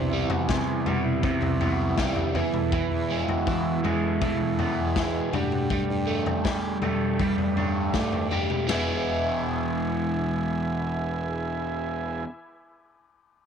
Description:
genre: psychedelic rock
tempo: 80 BPM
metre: 4/4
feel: straight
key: E mixolydian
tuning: A4 = 441 Hz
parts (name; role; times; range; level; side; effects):
- overdriven combo organ; sustained chords; 0.0-12.2 s; E3 to G#5; -30 LUFS; right 7 dB; none
- crunchy overdriven guitar; riff; 0.0-12.3 s; C3 to G4; -27 LUFS; equal; phaser
- fuzz picked electric bass; bass; 0.0-12.2 s; E1 to G3; -33 LUFS; equal; overdrive
- raw garage drum kit; drums; 0.3-8.9 s; kick drum, ride cymbal, snare drum, toms; -29 LUFS; left 3 dB; none
room: wet spring reverb, RT60 1.9 s, small room ambience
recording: 1960s-style stereo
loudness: -23 LUFS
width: side -7 dB against mid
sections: 0.0-8.7 A section; 8.7-11.7 B section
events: transistor combo organ solo 0.0-8.7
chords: 0.0 Cmaj7; 2.4 E; 5.3 Gsus2; 8.7 E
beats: 0.49 1.23 1.98 | 2.72 3.47 4.21 4.96 | 5.71 6.45 7.20 7.94 | 8.69 9.44 10.18 10.93

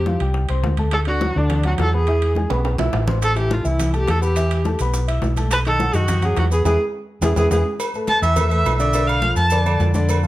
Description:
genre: latin, salsa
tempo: 210 BPM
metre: 4/4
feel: straight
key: unclear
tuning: A4 = 439 Hz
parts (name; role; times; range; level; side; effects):
- warm viola; melody; 0.0-9.8 s; D4 to A5; -21 LUFS; right 1 dB; plate reverb
- hollow-body short-scale fingered electric bass; bass; 0.0-10.3 s; A1 to F#2; -19 LUFS; equal; none
- dark grand piano; accompaniment; 0.1-10.3 s; D3 to E6; -25 LUFS; left 2 dB; none
- bongos and cowbell; percussion; 0.1-10.2 s; none; -30 LUFS; left 5 dB; none
- congas; percussion; 0.1-10.3 s; none; -29 LUFS; left 1 dB; none
- timbales and agogo bells; percussion; 0.2-10.2 s; none; -29 LUFS; right 6 dB; none
- maracas; percussion; 3.2-10.3 s; none; -36 LUFS; right 5 dB; none
room: light reverb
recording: none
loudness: -16 LUFS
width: side -16 dB against mid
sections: 0.0-7.8 A section; 7.8-10.3 B section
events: drum fill 2.4-3.2, 6.7-7.8; band accent 6.7-7.8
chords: 0.0 Fsus2; 0.9 Dadd9; 2.1 E; 3.2 Am; 4.4 Esus4; 5.5 B7; 6.7 E; 7.8 Asus2; 8.9 Bm7b5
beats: 0.07 0.35 0.64 | 0.93 1.22 1.50 1.79 | 2.08 2.36 2.65 2.94 | 3.22 3.51 3.79 4.08 | 4.37 4.65 4.94 5.22 | 5.51 5.80 6.08 6.37 | 6.66 6.94 7.23 7.51 | 7.80 8.09 8.37 8.66 | 8.95 9.23 9.52 9.80 | 10.09

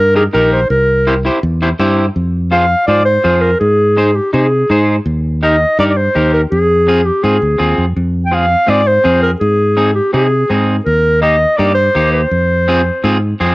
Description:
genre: latin, cumbia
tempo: 165 BPM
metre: 4/4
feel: straight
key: F dorian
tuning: A4 = 441 Hz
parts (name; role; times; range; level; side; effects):
- warm clarinet; melody; 0.0-13.2 s; G4 to G5; -12 LUFS; equal; plate reverb
- fingered electric bass; bass; 0.0-13.5 s; Bb1 to C3; -15 LUFS; equal; none
- electric guitar at the edge of break-up; accompaniment; 0.2-13.5 s; Bb3 to C5; -17 LUFS; equal; cassette tape, plate reverb
room: moderate booth ambience, RT60 0.2 s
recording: home recording on cassette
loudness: -10 LUFS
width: side -22 dB against mid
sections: 0.0-2.2 A section; 2.2-13.5 B section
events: none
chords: 0.0 Eb; 0.7 C7; 2.2 Fm; 3.6 Ab; 5.1 Eb; 6.5 Fm; 9.4 Ab; 10.9 Eb; 12.3 Fm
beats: 0.34 | 0.71 1.07 1.43 1.79 | 2.16 2.52 2.88 3.24 | 3.61 3.97 4.33 4.70 | 5.06 5.42 5.78 6.15 | 6.51 6.87 7.24 7.60 | 7.96 8.32 8.69 9.05 | 9.41 9.78 10.14 10.50 | 10.87 11.23 11.59 11.95 | 12.31 12.68 13.04 13.40

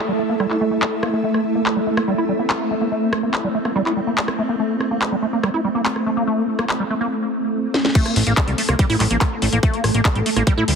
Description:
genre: psychedelic trance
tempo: 143 BPM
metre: 4/4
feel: straight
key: A phrygian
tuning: A4 = 440 Hz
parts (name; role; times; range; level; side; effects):
- swarming drone; sustained chords; 0.0-10.8 s; A3 to A4; -23 LUFS; right 1 dB; built-in reverb, vintage 12-bit sampler grit, sidechain pumping
- ethereal airy pad; texture; 0.0-7.1 s; E4 to E5; -28 LUFS; equal; ensemble chorus, built-in reverb, phaser, sidechain pumping
- liquid acid bass; riff; 0.1-10.7 s; G3 to E4; -23 LUFS; moving between left 4 dB and right 4 dB; chorus, auto-pan, sidechain pumping, dub echo
- techno drum kit; drums; 0.4-10.8 s; crash cymbal, handclaps, hi-hat, rim click, snare drum; -24 LUFS; left 1 dB; low-pass filter on snare, low-pass filter on hats, low-pass filter on cymbals, low-pass filter on room
- electronic kick drum; drums; 8.0-10.6 s; none; -19 LUFS; equal; none
- fat analog bass; bass; 8.2-10.7 s; A1 to A2; -19 LUFS; equal; none
room: moderate plate reverb, RT60 2.3 s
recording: heavily compressed radio sound, multiband compression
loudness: -17 LUFS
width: side -6 dB against mid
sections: 0.0-8.0 A section; 8.0-10.8 B section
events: filter sweep on acid bass 0.0-8.0; drum fill 7.7; drop 8.0-10.8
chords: 0.0 A5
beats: 0.40 0.82 | 1.24 1.66 2.08 2.50 | 2.92 3.34 3.76 4.18 | 4.59 5.01 5.43 5.85 | 6.27 6.69 7.11 7.53 | 7.95 8.37 8.79 9.21 | 9.63 10.05 10.47

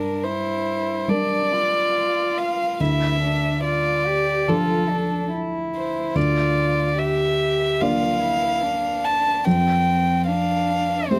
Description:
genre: neoclassical piano and strings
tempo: 72 BPM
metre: 4/4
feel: rubato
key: unclear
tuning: A4 = 440 Hz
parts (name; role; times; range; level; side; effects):
- dark violin; melody; 0.0-11.2 s; A4 to A5; -24 LUFS; equal; none
- dark cello; second line; 0.0-11.2 s; C4 to G4; -29 LUFS; equal; none
- felt-muted upright piano; accompaniment; 0.0-11.2 s; D2 to D5; -26 LUFS; equal; none
room: little or no reverb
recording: close, detailed microphones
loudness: -21 LUFS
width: mono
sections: 0.0-11.2 A section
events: none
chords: 0.0 Gm; 2.8 Dmadd9; 6.2 Bb/D; 9.5 Fsus2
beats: 0.23 1.09 1.95 | 2.80 3.63 4.48 5.33 | 6.16 6.98 7.81 8.64 | 9.46 10.28 11.10

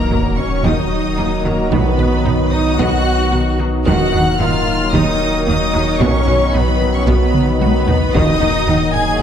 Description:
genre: cinematic, hybrid orchestral and electronic film score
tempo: 112 BPM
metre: 4/4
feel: straight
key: unclear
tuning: A4 = 442 Hz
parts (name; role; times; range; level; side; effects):
- rich chamber violin section; melody; 0.0-9.2 s; A#5 to G#6; -25 LUFS; left 1 dB; none
- rich studio violin section; second line; 0.0-9.2 s; A#4 to G#5; -22 LUFS; left 3 dB; none
- clear symphonic viola section; accompaniment; 0.0-9.2 s; A#3 to G#4; -22 LUFS; right 1 dB; none
- clear trombone section; sustained chords; 0.0-9.2 s; D#3 to F#3; -24 LUFS; right 3 dB; none
- mellow French horn section; sustained chords; 0.0-9.2 s; F#3 to D#4; -24 LUFS; left 3 dB; none
- phased analog pad; sustained chords; 0.0-9.2 s; D#3 to D#5; -24 LUFS; equal; phaser, chorus
- pure sine sub bass; bass; 0.0-9.2 s; D#1 to B1; -21 LUFS; left 1 dB; none
- sub drop; sound effects; 0.0-1.7 s; none; -24 LUFS; left 1 dB; none
- resonant blip pluck; arpeggios; 0.1-8.8 s; D#3 to B4; -29 LUFS; right 1 dB; none
- rich studio double bass section; bass; 0.1-8.8 s; B1 to D#2; -22 LUFS; right 2 dB; none
- rich symphonic cello section; bass; 0.1-8.8 s; B2 to D#3; -22 LUFS; right 2 dB; none
- taiko ensemble; drums; 0.1-9.2 s; none; -22 LUFS; left 1 dB; none
room: moderate scoring stage reverb, RT60 2.0 s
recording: dark, warm production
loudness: -13 LUFS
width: side -8 dB against mid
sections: 0.0-9.2 A section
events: impact 0.0-1.7; drum fill 7.3-8.1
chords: 0.0 D#m; 1.7 B; 3.9 D#m; 6.0 B; 8.1 D#m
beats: 0.11 0.65 1.18 | 1.72 2.25 2.79 3.33 | 3.86 4.40 4.93 5.47 | 6.00 6.54 7.08 7.61 | 8.15 8.68 9.22

